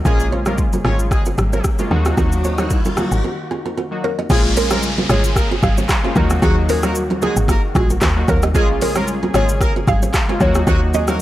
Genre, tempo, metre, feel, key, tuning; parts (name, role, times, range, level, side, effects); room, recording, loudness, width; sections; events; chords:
afrobeats; 113 BPM; 4/4; swing 55% on 16ths; Eb minor; A4 = 437 Hz
warm analog pad; sustained chords; 0.0-11.2 s; Db3 to Ab4; -30 LUFS; left 1 dB
nylon-string guitar; riff; 0.0-11.2 s; F4 to Eb5; -25 LUFS; right 4 dB; tape echo
clear horn section; second line; 0.1-11.2 s; Gb3 to Db5; -27 LUFS; equal
warm analog keys; accompaniment; 0.1-11.2 s; Gb3 to Gb4; -23 LUFS; left 1 dB; chorus
woody log drum bass; bass; 0.1-11.2 s; Ab1 to Eb2; -19 LUFS; equal
afro-pop drum kit; drums; 0.1-11.2 s; crash cymbal, handclaps, hi-hat, kick drum, rim click, shaker; -19 LUFS; equal
riser and downlifter; sound effects; 1.3-8.5 s; -28 LUFS; equal
congas; percussion; 0.5-11.2 s; -27 LUFS; left 1 dB
mallet-like synth pluck; melody; 4.0-11.2 s; Gb4 to F5; -23 LUFS; equal; chorus, phaser, tape echo
little or no reverb; dry, gritty hardware recording; -14 LUFS; side -14 dB against mid
0.0-4.3 A section; 4.3-11.2 B section
riser 1.3-4.3; break 3.2-4.3
0.1 Bbm7; 1.9 Ebm; 4.3 Bbm7; 6.2 Ebm; 8.5 Bbm7; 10.4 Ebm